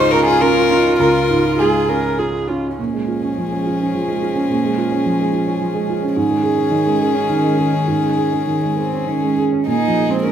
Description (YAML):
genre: neoclassical piano and strings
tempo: 99-109 BPM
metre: 3/4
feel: rubato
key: Bb minor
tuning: A4 = 439 Hz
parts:
  - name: rich violin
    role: melody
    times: 0.0-10.3 s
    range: Ab4 to C5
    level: -21 LUFS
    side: left 7 dB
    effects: none
  - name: warm cello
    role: second line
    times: 0.0-10.3 s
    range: Eb3 to F4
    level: -24 LUFS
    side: right 4 dB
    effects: none
  - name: felt-muted upright piano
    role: accompaniment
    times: 0.0-10.3 s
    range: Db2 to Eb6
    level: -18 LUFS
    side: right 3 dB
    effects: none
  - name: warm viola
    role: accompaniment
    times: 0.0-10.3 s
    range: Db4 to Bb4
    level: -21 LUFS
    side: right 1 dB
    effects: none
room: moderate large studio reverb, RT60 1.3 s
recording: none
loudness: -15 LUFS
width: side -9 dB against mid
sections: 0.0-2.8 A section; 2.8-9.7 B section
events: none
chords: 0.0 Dbadd9; 2.8 Bbm7; 6.2 Absus4; 9.7 Bb7(no3)